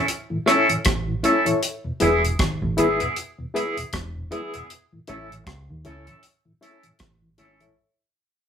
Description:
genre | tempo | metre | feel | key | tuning
roots reggae | 78 BPM | 4/4 | swing 58% on 16ths | unclear | A4 = 440 Hz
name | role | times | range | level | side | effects
twangy electric guitar | accompaniment | 0.0-7.6 s | B3 to A4 | -22 LUFS | right 1 dB | harmonic tremolo
deep reggae drum kit | drums | 0.1-7.8 s | hi-hat, kick drum, rim click | -24 LUFS | equal | none
mellow tonewheel organ | accompaniment | 0.3-7.7 s | E2 to E4 | -28 LUFS | equal | slow rotary speaker
reed electric piano | stabs | 0.5-7.8 s | E4 to E5 | -24 LUFS | left 3 dB | fast tremolo
deep dub fingered electric bass | bass | 0.9-7.8 s | E1 to D#2 | -29 LUFS | right 1 dB | none
room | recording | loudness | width
wet studio reverb, RT60 0.6 s | rough rehearsal-room recording | -20 LUFS | side -8 dB against mid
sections
0.0-7.8 A section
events
fade-out 0.0-7.8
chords
0.0 A; 1.6 E; 4.7 A

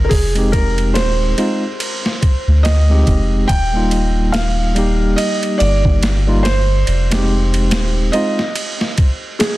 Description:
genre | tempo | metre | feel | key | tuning
trip hop | 71 BPM | 4/4 | swing 58% on 16ths | F dorian | A4 = 439 Hz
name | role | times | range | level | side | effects
felt-muted upright piano | melody | 0.0-9.6 s | Ab4 to G5 | -21 LUFS | right 2 dB | tape echo
soft dub sub bass | bass | 0.0-8.1 s | Eb1 to D2 | -15 LUFS | equal | none
boom bap sampler-style drum kit | drums | 0.1-9.6 s | hi-hat, kick drum, ride cymbal, snare drum | -19 LUFS | equal | overdrive, studio ambience
tine electric piano | accompaniment | 0.3-8.4 s | G3 to G4 | -20 LUFS | left 1 dB | tremolo, tape echo
room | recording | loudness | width
digital ambience | dense, heavily limited modern master, vinyl crackle | -13 LUFS | side -17 dB against mid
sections
0.0-9.6 A section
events
none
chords
0.1 Fm7; 3.5 Ebadd9; 6.9 Fm7

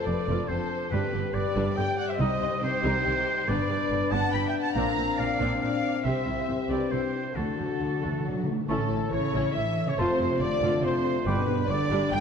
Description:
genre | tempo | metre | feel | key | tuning
cinematic | 140 BPM | 3/4 | straight | G major | A4 = 440 Hz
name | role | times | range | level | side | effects
dark symphonic violin section | melody | 0.0-12.2 s | A4 to B5 | -34 LUFS | left 3 dB | none
warm oboe | second line | 0.0-11.4 s | A4 to B5 | -32 LUFS | right 2 dB | none
warm symphonic violin section | second line | 0.0-12.2 s | F#4 to G5 | -36 LUFS | left 4 dB | none
mellow French horn section | sustained chords | 0.0-12.2 s | F3 to C#5 | -32 LUFS | left 4 dB | none
concert harp | arpeggios | 0.0-12.2 s | F2 to A4 | -37 LUFS | left 9 dB | none
warm symphonic viola section | accompaniment | 0.1-12.2 s | C3 to G4 | -34 LUFS | right 2 dB | none
rich symphonic double bass section | bass | 0.1-12.2 s | F1 to D2 | -33 LUFS | right 3 dB | none
warm symphonic cello section | bass | 0.1-12.2 s | F2 to A3 | -33 LUFS | right 3 dB | none
timpani | percussion | 0.9-1.5, 7.4-8.7, 11.3-11.9 s | G2 to D3 | -36 LUFS | equal | none
mellow clarinet | second line | 8.7-12.2 s | A4 to G5 | -35 LUFS | left 2 dB | none
mellow hollow concert flute | second line | 8.7-11.5 s | C6 to D6 | -37 LUFS | equal | none
clear trumpet section | stabs | 8.7-12.2 s | A4 to G5 | -31 LUFS | right 3 dB | none
room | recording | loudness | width
wet scoring stage reverb, RT60 1.9 s | nothing above 10.6 kHz | -24 LUFS | side -6 dB against mid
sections
0.0-8.7 A section; 8.7-12.2 A section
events
timpani fill 7.4-8.7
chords
0.0 F; 0.9 G; 2.2 Cm; 3.5 G; 4.8 Bbadd9; 6.0 C; 7.4 D; 8.7 A; 10.0 F; 11.3 G

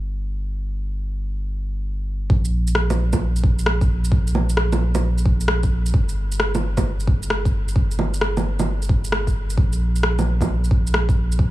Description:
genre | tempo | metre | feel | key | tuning
future garage | 132 BPM | 4/4 | swing 66% on 16ths | G minor | A4 = 440 Hz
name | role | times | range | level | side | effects
warm sub bass | bass | 0.0-11.5 s | G1 to Bb1 | -21 LUFS | equal | sidechain pumping
electronic kick drum | drums | 2.3-11.5 s | none | -19 LUFS | equal | overdrive
electronic shaker, rim click and bongos | drums | 2.4-11.4 s | none | -24 LUFS | right 1 dB | overdrive, low-pass filter on perc, low-pass filter on snare
room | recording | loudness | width
little or no reverb | studio reverb | -18 LUFS | side -16 dB against mid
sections
0.0-2.3 A section; 2.3-11.5 B section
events
none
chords
none

